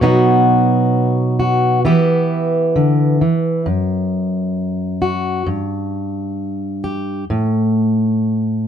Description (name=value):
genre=folk, solo fingerstyle acoustic guitar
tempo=66 BPM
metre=4/4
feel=straight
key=unclear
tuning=A4 = 440 Hz
part: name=fingerpicked plugged-in steel-string acoustic guitar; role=solo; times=0.0-8.7 s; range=F#2 to G4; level=-14 LUFS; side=equal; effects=none
room=light reverb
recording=dark, warm production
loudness=-15 LUFS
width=side -8 dB against mid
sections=0.0-8.7 A section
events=none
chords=0.0 B; 1.8 Em; 3.7 N.C.